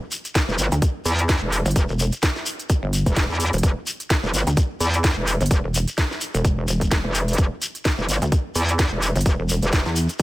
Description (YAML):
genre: bass house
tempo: 128 BPM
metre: 4/4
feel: swing 57% on 16ths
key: E minor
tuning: A4 = 444 Hz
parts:
  - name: garage drum kit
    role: drums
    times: 0.1-10.2 s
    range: hi-hat, snare drum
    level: -26 LUFS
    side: equal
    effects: none
  - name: shekere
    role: percussion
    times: 0.1-10.2 s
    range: none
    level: -30 LUFS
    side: left 2 dB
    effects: none
  - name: electronic kick drum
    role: drums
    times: 0.4-10.2 s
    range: none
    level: -22 LUFS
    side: equal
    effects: none
  - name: metallic wobble bass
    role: bass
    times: 0.5-9.8 s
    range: E1 to E2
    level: -22 LUFS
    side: equal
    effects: chorus, tube saturation, sidechain pumping
  - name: pulsing pluck wobble bass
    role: bass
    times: 0.7-10.1 s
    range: E1 to E2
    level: -21 LUFS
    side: equal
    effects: chorus, overdrive, sidechain pumping
room: little or no reverb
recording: none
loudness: -19 LUFS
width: side -18 dB against mid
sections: 0.0-10.2 A section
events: none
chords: none